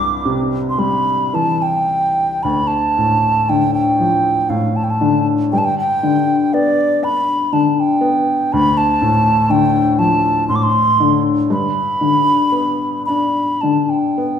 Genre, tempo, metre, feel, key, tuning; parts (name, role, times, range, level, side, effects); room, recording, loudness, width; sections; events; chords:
celtic folk, Celtic slow air; 60 BPM; 3/4; uneven beats, rubato; D dorian; A4 = 440 Hz
baroque flute; melody; 0.0-14.4 s; D5 to D6; -16 LUFS; right 1 dB
felt-muted upright piano; accompaniment; 0.0-14.4 s; C2 to D4; -17 LUFS; left 2 dB
wet recital hall reverb, RT60 1.3 s; recorded in a church or concert hall; -13 LUFS; side -8 dB against mid
0.0-2.4 A section; 2.4-14.4 B section
0.0 C; 2.4 Dm; 5.5 G; 8.5 Dm; 11.5 G